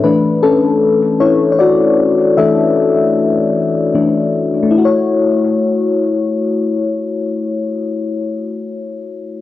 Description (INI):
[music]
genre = R&B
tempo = 51 BPM (dotted quarters)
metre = 6/8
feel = straight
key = unclear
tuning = A4 = 437 Hz
[part]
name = mellow FM electric piano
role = solo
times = 0.0-9.4 s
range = E3 to E5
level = -12 LUFS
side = left 3 dB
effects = chorus, cassette tape, analog delay
[sound]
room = moderate studio reverb, RT60 0.5 s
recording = home recording on cassette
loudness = -12 LUFS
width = side -14 dB against mid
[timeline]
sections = 0.0-4.7 A section; 4.7-7.1 B section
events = FM electric piano solo 0.0-4.7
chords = 0.0 E9sus4; 4.7 A6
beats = | 0.02 1.20 | 2.37 3.55 | 4.72 5.90